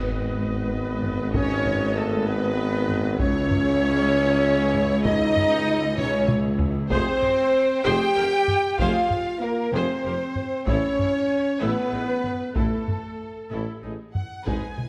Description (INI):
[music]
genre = cinematic, epic orchestral film score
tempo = 64 BPM (dotted quarters)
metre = 6/8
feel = straight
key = unclear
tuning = A4 = 444 Hz
[part]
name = rich symphonic violin section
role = melody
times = 0.0-14.9 s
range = A4 to G#5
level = -35 LUFS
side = equal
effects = none
[part]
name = rich symphonic violin section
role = second line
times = 0.0-14.8 s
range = G#4 to G5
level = -33 LUFS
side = equal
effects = none
[part]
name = small flute group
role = second line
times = 0.0-13.5 s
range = A4 to G5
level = -33 LUFS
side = equal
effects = none
[part]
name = warm studio viola section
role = accompaniment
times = 0.0-14.8 s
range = G#3 to D#5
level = -36 LUFS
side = equal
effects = none
[part]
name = dark French horn section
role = sustained chords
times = 0.0-14.9 s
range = A3 to G4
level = -27 LUFS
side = equal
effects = none
[part]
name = rich symphonic double bass section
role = bass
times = 0.0-14.6 s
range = F1 to C#2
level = -33 LUFS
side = equal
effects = none
[part]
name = warm symphonic cello section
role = bass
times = 0.0-14.6 s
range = C#2 to A2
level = -33 LUFS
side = equal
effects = none
[part]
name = warm tuba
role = bass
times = 0.0-14.6 s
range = F1 to C#2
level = -33 LUFS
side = equal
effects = none
[part]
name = taiko ensemble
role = drums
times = 1.0-14.9 s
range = none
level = -30 LUFS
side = equal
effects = none
[sound]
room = moderate scoring stage reverb, RT60 1.7 s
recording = none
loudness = -23 LUFS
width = mono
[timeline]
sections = 0.0-14.5 A section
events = drum fill 6.0-6.9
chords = 0.0 G#m; 3.2 C#m; 6.9 Fm; 10.7 A